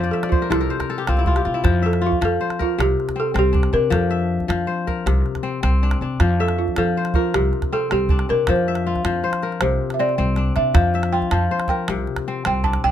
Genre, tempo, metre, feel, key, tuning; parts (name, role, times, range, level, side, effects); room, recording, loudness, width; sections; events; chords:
west african traditional, West African string and xylophone music; 105 BPM (dotted quarters); 12/8; straight; F major; A4 = 440 Hz
balafon; melody; 0.0-12.9 s; E4 to A5; -22 LUFS; right 2 dB
kora; arpeggios; 0.0-12.9 s; C3 to G5; -22 LUFS; left 5 dB
upright bass; bass; 0.0-12.9 s; C2 to C3; -21 LUFS; equal
calabash; percussion; 0.0-12.8 s; -23 LUFS; right 2 dB
little or no reverb; close, detailed microphones; -18 LUFS; side -10 dB against mid
0.0-1.6 A section; 1.6-12.9 B section
kora fill 0.0-1.6; balafon solo 1.6-12.9; drum fill 10.2-10.8
0.0 F; 0.5 C; 1.6 F; 2.8 C5; 3.9 F; 5.1 Csus2; 6.2 F; 7.3 C5; 8.5 F5; 9.6 C7sus2; 10.8 F; 11.9 Bb69/C